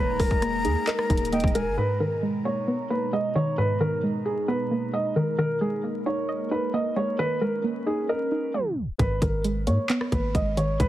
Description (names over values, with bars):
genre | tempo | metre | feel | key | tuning
hip hop, trap | 133 BPM | 4/4 | half-time | G# minor | A4 = 440 Hz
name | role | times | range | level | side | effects
felt-muted upright piano | melody | 0.0-10.9 s | G#4 to D#5 | -27 LUFS | equal | low-pass filter
breathy mellow silver concert flute | second line | 0.0-1.8 s | G5 to A#5 | -33 LUFS | left 4 dB | ping-pong delay
soft round pluck | accompaniment | 0.0-10.9 s | G#2 to D#5 | -28 LUFS | right 1 dB | chorus, low-pass filter
warbly tape-like pad | sustained chords | 0.0-9.0 s | B2 to A#5 | -34 LUFS | right 1 dB | chorus, built-in reverb
warm 808-style bass | bass | 0.0-1.8, 9.0-10.9 s | D#1 to G#2 | -28 LUFS | equal | none
trap drum kit | drums | 0.2-1.7, 9.0-10.9 s | handclaps, hi-hat, kick drum, rim click | -26 LUFS | equal | none
room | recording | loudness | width
little or no reverb | heavily compressed radio sound, multiband compression, vinyl crackle, tape stop | -23 LUFS | side -14 dB against mid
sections
0.0-1.8 A section; 1.8-9.0 B section; 9.0-10.9 C section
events
tape stop 8.5-9.0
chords
0.0 D#sus4; 1.8 G#madd9; 5.4 D#sus4; 9.0 G#madd9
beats
0.42 0.87 1.32 | 1.78 2.23 2.68 3.13 | 3.58 4.03 4.48 4.93 | 5.38 5.84 6.29 6.74 | 7.19 7.64 8.09 8.54 | 8.99 9.45 9.90 10.35 | 10.80